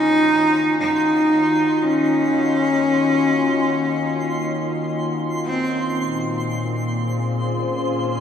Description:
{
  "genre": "ambient",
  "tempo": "58 BPM",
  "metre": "4/4",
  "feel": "straight",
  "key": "unclear",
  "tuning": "A4 = 439 Hz",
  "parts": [
    { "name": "bright cello", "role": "melody", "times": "0.0-5.9 s", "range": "C4 to Eb4", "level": "-19 LUFS", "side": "left 1 dB", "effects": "shimmer reverb, tape echo" },
    { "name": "evolving wavetable pad", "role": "sustained chords", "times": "0.0-8.2 s", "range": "Bb2 to Eb5", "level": "-24 LUFS", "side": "left 1 dB", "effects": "chorus, built-in reverb, shimmer reverb" },
    { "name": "twinkling granular texture", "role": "texture", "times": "0.0-8.2 s", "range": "C6", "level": "-31 LUFS", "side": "right 3 dB", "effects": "built-in reverb, shimmer reverb" }
  ],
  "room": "wet huge ambient reverb, RT60 8.3 s",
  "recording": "in a vast, echoing space, studio reverb",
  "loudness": "-17 LUFS",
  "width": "side -8 dB against mid",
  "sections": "0.0-8.2 A section",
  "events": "fade-in on ambient pad 0.0-8.2; fade-in on synth texture 0.0-8.2",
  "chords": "0.0 Ebm7; 6.0 Bbm7"
}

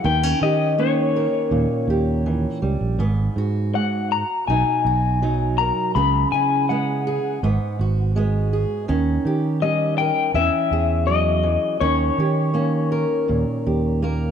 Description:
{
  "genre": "folk",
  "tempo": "82 BPM",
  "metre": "4/4",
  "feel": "straight",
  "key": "unclear",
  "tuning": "A4 = 440 Hz",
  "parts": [
    { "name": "electric guitar through a small old amp", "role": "melody", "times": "0.0-14.0 s", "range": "C#5 to B5", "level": "-22 LUFS", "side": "left 7 dB", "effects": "harmonic tremolo, tape echo" },
    { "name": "fingerpicked steel-string acoustic guitar", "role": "accompaniment", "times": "0.0-14.3 s", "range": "G#2 to A#4", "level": "-23 LUFS", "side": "right 2 dB", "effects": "none" },
    { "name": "fingered electric bass", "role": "bass", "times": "0.0-14.3 s", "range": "G#1 to D#3", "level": "-22 LUFS", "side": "right 2 dB", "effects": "none" }
  ],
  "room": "moderate echo chamber reverb, RT60 2.3 s",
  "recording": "none",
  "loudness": "-18 LUFS",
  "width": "side -8 dB against mid",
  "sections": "0.0-14.3 A section",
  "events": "none",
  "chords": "0.0 D#7; 3.0 G#m7; 4.5 Bmaj7; 6.0 C#m7; 7.4 G#m7; 8.9 D#7; 10.3 C#madd9/E; 11.8 D#7"
}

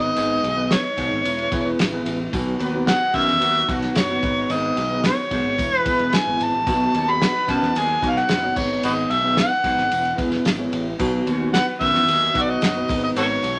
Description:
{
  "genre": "uptempo 1960s-style soul",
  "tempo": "111 BPM",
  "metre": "4/4",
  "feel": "straight",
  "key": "B major",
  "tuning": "A4 = 444 Hz",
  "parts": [
    { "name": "overdriven harmonica", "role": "melody", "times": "0.0-13.6 s", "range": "F#4 to B5", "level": "-23 LUFS", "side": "equal", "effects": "none" },
    { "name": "tine electric piano", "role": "accompaniment", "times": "0.0-13.6 s", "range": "D#3 to C#5", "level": "-29 LUFS", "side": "equal", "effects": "overdrive" },
    { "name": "tonewheel organ", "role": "sustained chords", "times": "0.0-13.6 s", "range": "D#3 to F#4", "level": "-35 LUFS", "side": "equal", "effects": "none" },
    { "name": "modern bright picked electric bass", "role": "bass", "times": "0.0-13.6 s", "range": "E1 to E2", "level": "-32 LUFS", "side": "equal", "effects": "none" },
    { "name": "clear baritone saxophone", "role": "riff", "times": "0.2-13.5 s", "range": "F#2 to B2", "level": "-29 LUFS", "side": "equal", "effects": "none" },
    { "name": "warm soul drum kit", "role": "drums", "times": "0.2-13.6 s", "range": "crash cymbal, hi-hat, kick drum, ride cymbal, snare drum", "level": "-28 LUFS", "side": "equal", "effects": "none" },
    { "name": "tambourine", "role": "percussion", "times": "0.2-13.6 s", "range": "none", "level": "-47 LUFS", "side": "equal", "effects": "none" },
    { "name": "warm horn section", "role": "second line", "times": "2.6-12.9 s", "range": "F#3 to C#5", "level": "-34 LUFS", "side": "equal", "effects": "none" }
  ],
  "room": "wet studio ambience, RT60 0.5 s",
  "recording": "none",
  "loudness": "-21 LUFS",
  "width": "mono",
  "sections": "0.0-13.6 A section",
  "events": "none",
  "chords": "0.0 G#m; 1.3 E; 2.3 B; 4.2 G#m; 5.6 E; 6.7 B; 8.6 G#m; 9.9 E; 11.0 B; 12.9 G#m"
}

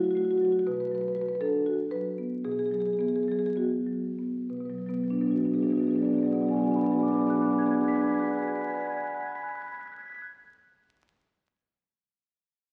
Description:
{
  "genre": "classical, contemporary piece for solo marimba",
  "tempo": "187-252 BPM (eighths)",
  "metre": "7/8",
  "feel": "rubato",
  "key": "B dorian",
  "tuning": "A4 = 440 Hz",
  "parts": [
    { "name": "marimba with soft mallets", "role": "solo", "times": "0.0-10.3 s", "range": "B2 to B6", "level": "-28 LUFS", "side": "equal", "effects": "none" }
  ],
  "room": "wet recital hall reverb, RT60 1.5 s",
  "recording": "very old 78 rpm record, vinyl crackle",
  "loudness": "-28 LUFS",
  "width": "mono",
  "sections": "0.0-4.5 A section; 4.5-8.8 B section",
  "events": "slowing down 0.0-4.5",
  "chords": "0.0 B5; 0.7 Bm; 2.5 G#m7/B; 4.5 Bm6"
}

